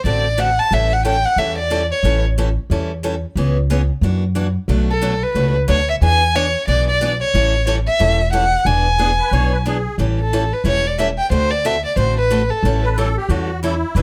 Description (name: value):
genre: acoustic string swing (jazz manouche)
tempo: 181 BPM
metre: 4/4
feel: swing 59% on 8ths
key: A mixolydian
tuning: A4 = 440 Hz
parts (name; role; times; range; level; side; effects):
- warm violin; melody; 0.0-2.2, 4.9-12.8 s; A4 to A5; -20 LUFS; equal; plate reverb
- picked steel-string acoustic guitar; accompaniment; 0.0-14.0 s; B2 to B4; -26 LUFS; equal; none
- upright bass; bass; 0.0-14.0 s; E1 to F#2; -21 LUFS; equal; none
- musette accordion; second line; 9.0-10.0, 12.8-14.0 s; E4 to C#5; -26 LUFS; equal; slapback echo
room: light reverb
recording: close, detailed microphones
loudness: -17 LUFS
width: mono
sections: 0.0-10.0 A section; 10.0-14.0 A section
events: none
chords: 0.0 D7; 0.7 A7; 3.4 C#m7; 4.0 F#aug7; 4.7 Bm7; 6.0 E7; 7.3 A7; 8.7 E7; 10.0 A7; 11.3 D7; 12.6 A7